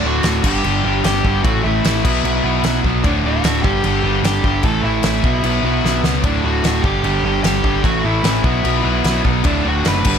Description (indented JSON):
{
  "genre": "punk rock",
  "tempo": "150 BPM",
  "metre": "4/4",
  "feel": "straight",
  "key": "D major",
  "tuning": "A4 = 438 Hz",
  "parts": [
    { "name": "dark smooth lead guitar", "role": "melody", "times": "0.0-10.2 s", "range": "D4 to B5", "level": "-22 LUFS", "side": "left 1 dB", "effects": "overdrive" },
    { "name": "cranked stack guitar", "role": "riff", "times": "0.0-10.2 s", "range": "D2 to B3", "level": "-22 LUFS", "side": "left 15 dB", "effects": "overdrive" },
    { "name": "high-gain distorted guitar", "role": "riff", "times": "0.0-10.2 s", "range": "D2 to B3", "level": "-26 LUFS", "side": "equal", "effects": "distortion" },
    { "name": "overdriven electric guitar", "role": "riff", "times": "0.0-10.2 s", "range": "D2 to B3", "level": "-21 LUFS", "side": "right 14 dB", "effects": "none" },
    { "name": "overdriven picked electric bass", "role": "bass", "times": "0.0-10.2 s", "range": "D1 to C#2", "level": "-21 LUFS", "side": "equal", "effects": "none" },
    { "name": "loose indie drum kit", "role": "drums", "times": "0.2-10.1 s", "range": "crash cymbal, kick drum, snare drum", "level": "-20 LUFS", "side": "equal", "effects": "none" }
  ],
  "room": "little or no reverb",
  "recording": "none",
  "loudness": "-14 LUFS",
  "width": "side -7 dB against mid",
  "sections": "0.0-10.2 A section",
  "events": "drum fill 5.8-6.2",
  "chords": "0.4 G5; 1.4 A5; 2.0 B5; 3.0 D; 3.6 G5; 4.6 A5; 5.2 B5; 6.2 D; 6.8 G5; 7.8 A5; 8.4 B5; 9.4 D"
}